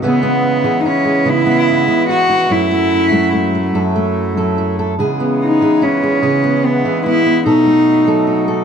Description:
acoustic folk-pop ballad; 49 BPM (dotted quarters); 6/8; straight; C# minor; A4 = 440 Hz
fingerpicked steel-string acoustic guitar; accompaniment; 0.0-8.6 s; F#2 to A4; -16 LUFS; right 2 dB
hand-pumped harmonium; sustained chords; 0.0-8.6 s; F#2 to E4; -21 LUFS; left 3 dB
warm cello; melody; 0.1-8.3 s; B3 to F#4; -13 LUFS; equal
moderate plate reverb, RT60 2.9 s; dark, warm production; -12 LUFS; side -7 dB against mid
0.0-8.6 A section
0.0 C#m7; 2.5 F#m7; 5.0 C#m7; 7.5 B7
| 0.03 1.26 | 2.49 3.73 | 4.98 6.22 | 7.45

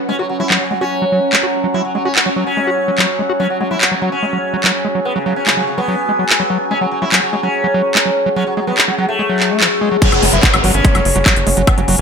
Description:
psychedelic trance; 145 BPM; 4/4; straight; A4 = 440 Hz
overtone-sweeping drone; sustained chords; 0.0-12.0 s; F#3 to G#4; -21 LUFS; left 2 dB; chorus, built-in reverb, sidechain pumping
ethereal airy pad; texture; 0.0-10.0 s; C#4 to G#5; -26 LUFS; right 1 dB; ensemble chorus, built-in reverb, sidechain pumping
sitar; melody; 0.1-12.0 s; C#3 to E4; -19 LUFS; right 1 dB; phaser, sidechain pumping, tape echo
overdriven acid bass; riff; 0.1-12.0 s; E3 to F#4; -20 LUFS; moving between left 5 dB and right 6 dB; distortion, auto-pan, cassette tape, sidechain pumping, tape echo
drum and bass drum kit; drums; 0.5-12.0 s; crash cymbal, handclaps, hi-hat, woodblock; -15 LUFS; equal; low-pass filter on hats, studio reverb, low-pass filter on snare, low-pass filter on perc, low-pass filter on cymbals
electronic kick drum; drums; 10.0-11.8 s; -12 LUFS; equal; studio reverb
downlifter; sound effects; 10.0-12.0 s; -20 LUFS; equal
tight sequencer bass; bass; 10.1-12.0 s; F#1 to G#1; -17 LUFS; equal; tube saturation
light reverb; -12 LUFS; side -6 dB against mid
0.0-10.0 A section; 10.0-12.0 B section
filter sweep on acid bass 0.0-10.0; drop 10.0-12.0
0.0 F#5
| 0.09 0.50 0.92 1.33 | 1.74 2.16 2.57 2.98 | 3.40 3.81 4.22 4.64 | 5.05 5.47 5.88 6.29 | 6.71 7.12 7.54 7.95 | 8.36 8.78 9.19 9.61 | 10.02 10.43 10.85 11.26 | 11.67

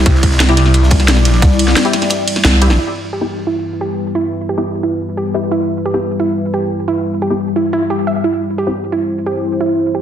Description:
dark technical drum and bass; 176 BPM; 4/4; straight; E minor; A4 = 442 Hz
dark analog pad; sustained chords; 0.0-10.0 s; G3 to D5; -19 LUFS; left 2 dB; chorus, sidechain pumping
pulsing pluck wobble bass; bass; 0.0-2.8 s; C2; -12 LUFS; equal; chorus, tube saturation
phased detuned saw bass; bass; 0.1-1.4 s; C2; -11 LUFS; equal; phaser, overdrive
crunchy breakbeat drum kit; drums; 0.1-2.8 s; ride cymbal, snare drum; -27 LUFS; left 1 dB; high-pass filter on cymbals, studio reverb, high-pass filter on hats, high-pass filter on snare, high-pass filter on room
drum and bass drum kit; drums; 0.1-2.8 s; hi-hat, ride cymbal, snare drum; -16 LUFS; equal; studio reverb
electronic kick drum; drums; 0.1-1.5 s; -12 LUFS; equal; overdrive, studio reverb
filtered dub chord stab; stabs; 0.5-8.7 s; B3 to G4; -22 LUFS; left 2 dB; analog chorus, tape echo
soft round pluck; arpeggios; 2.8-10.0 s; E4 to E5; -18 LUFS; right 4 dB; chorus, vintage 12-bit sampler grit, sidechain pumping, tape echo
moderate digital room reverb, RT60 1.1 s, studio reverb; dense, heavily limited modern master; -12 LUFS; side -10 dB against mid
0.0-2.8 A section; 2.8-10.0 B section
drop 0.0-2.8; kick drops out 2.1-2.8; band accent 2.4; filter sweep on synth stab 2.8-10.0
0.0 C; 2.8 Em; 8.2 C
| 0.06 0.40 0.74 1.08 | 1.42 1.76 2.10 2.45 | 2.79 3.13 3.47 3.81 | 4.15 4.49 4.83 5.17 | 5.51 5.86 6.20 6.54 | 6.88 7.22 7.56 7.90 | 8.24 8.58 8.92 9.26 | 9.61 9.95

